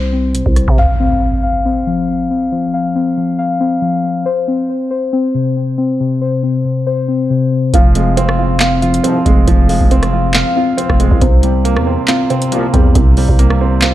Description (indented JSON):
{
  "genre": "hip hop, trap",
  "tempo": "138 BPM",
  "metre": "4/4",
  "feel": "half-time",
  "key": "F minor",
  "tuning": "A4 = 439 Hz",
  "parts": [
    { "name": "muted felt-like synth keys", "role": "arpeggios", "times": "0.0-13.9 s", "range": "C3 to F5", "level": "-15 LUFS", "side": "left 4 dB", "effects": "chorus, digital delay" },
    { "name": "growling 808-style bass", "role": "bass", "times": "0.0-0.8, 7.7-13.9 s", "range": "F1 to C3", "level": "-15 LUFS", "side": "equal", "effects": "none" },
    { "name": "booming analog drum machine", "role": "drums", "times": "0.3-0.9, 7.7-13.9 s", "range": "handclaps, hi-hat, kick drum, rim click, snare drum", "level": "-12 LUFS", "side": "equal", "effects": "none" },
    { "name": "impact", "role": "sound effects", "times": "0.8-2.5 s", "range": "none", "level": "-18 LUFS", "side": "right 1 dB", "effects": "none" },
    { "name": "dark concert grand piano", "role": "accompaniment", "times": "7.7-13.9 s", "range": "C3 to F5", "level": "-17 LUFS", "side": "right 6 dB", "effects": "none" },
    { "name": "warm brass ensemble", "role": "stabs", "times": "9.0-9.2, 12.5-12.7 s", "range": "C2 to F3", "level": "-20 LUFS", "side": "left 2 dB", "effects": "none" }
  ],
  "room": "light reverb",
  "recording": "dark, warm production",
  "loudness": "-11 LUFS",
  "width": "side -13 dB against mid",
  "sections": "0.8-13.9 A section",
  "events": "impact 0.8-2.5",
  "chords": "0.0 N.C.; 0.8 F5; 4.3 N.C.; 7.7 Fm; 11.2 C7sus4",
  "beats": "0.35 | 0.78 1.22 1.65 2.08 | 2.52 2.95 3.39 3.82 | 4.26 4.69 5.13 5.56 | 6.00 6.43 6.87 7.30 | 7.74 8.17 8.61 9.04 | 9.48 9.91 10.35 10.78 | 11.21 11.65 12.09 12.52 | 12.95 13.39 13.82"
}